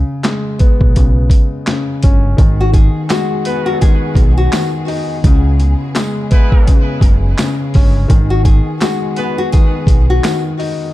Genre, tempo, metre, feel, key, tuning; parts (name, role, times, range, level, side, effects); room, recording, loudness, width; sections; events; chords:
hip hop, boom-bap hip-hop; 84 BPM; 4/4; swing 60% on 16ths; G# minor; A4 = 440 Hz
dark grand piano; accompaniment; 0.0-10.9 s; C#3 to D#4; -19 LUFS; left 2 dB; cassette tape
deep dub fingered electric bass; bass; 0.0-10.2 s; F#1 to C#2; -13 LUFS; equal
boom bap sampler-style drum kit; drums; 0.2-10.8 s; handclaps, hi-hat, kick drum, snare drum; -12 LUFS; equal
warm studio string section; sustained chords; 2.4-10.9 s; C#3 to G#4; -29 LUFS; right 1 dB
nylon-string guitar; melody; 2.6-10.4 s; F#4 to G#4; -20 LUFS; left 3 dB; digital delay
tambourine; percussion; 3.1-10.4 s; -34 LUFS; right 8 dB
clear horn section; stabs; 3.5-9.4 s; G#3 to B4; -28 LUFS; right 3 dB; digital delay
small room reverb; dark, warm production; -10 LUFS; side -16 dB against mid
0.0-2.4 A section; 2.4-10.9 B section
0.0 C#5; 2.4 G#m7; 5.2 C#m7; 8.1 G#m7